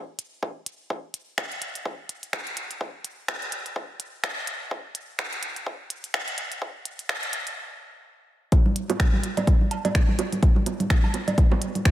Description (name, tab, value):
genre	techno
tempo	126 BPM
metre	4/4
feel	swing 58% on 16ths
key	none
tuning	none
part	minimal click drum kit	drums	0.2-11.9 s	finger snaps, hi-hat	-30 LUFS	equal	overdrive, high-pass filter on hats, high-pass filter on snare, high-pass filter on room
part	electronic kick drum	drums	0.4-11.9 s	none	-21 LUFS	equal	high-pass filter on kick, high-pass filter on room
part	bongos, congas and cowbell	percussion	8.5-11.8 s	none	-26 LUFS	right 3 dB	tape echo
room	light reverb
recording	high-pass filter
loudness	-24 LUFS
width	side -14 dB against mid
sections	0.0-8.5 A section; 8.5-11.9 B section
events	build-up 0.0-8.5; stop 7.6-8.5; drop 8.5-11.9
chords	none